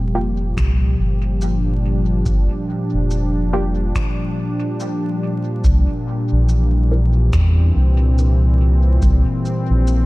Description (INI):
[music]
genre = ambient dub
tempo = 71 BPM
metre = 4/4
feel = swing 59% on 16ths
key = G dorian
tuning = A4 = 440 Hz
[part]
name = warm analog pad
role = sustained chords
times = 0.0-10.1 s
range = Bb2 to G4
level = -21 LUFS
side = equal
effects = chorus
[part]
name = round analog bass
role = bass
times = 0.0-10.1 s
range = F1 to E2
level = -16 LUFS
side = equal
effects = none
[part]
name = filtered dub chord stab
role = stabs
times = 0.1-7.2 s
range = Bb3 to Bb4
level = -27 LUFS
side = equal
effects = chorus, dub echo
[part]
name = electronic kick drum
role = drums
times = 0.6-9.2 s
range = none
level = -20 LUFS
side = equal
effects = none
[part]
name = shaker and finger snaps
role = drums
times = 0.6-10.1 s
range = none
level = -35 LUFS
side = left 1 dB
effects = dub echo
[sound]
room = small room ambience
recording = dark, warm production, vinyl crackle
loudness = -15 LUFS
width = side -20 dB against mid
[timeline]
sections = 0.0-10.1 A section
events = none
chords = 0.0 Gm7; 5.6 C7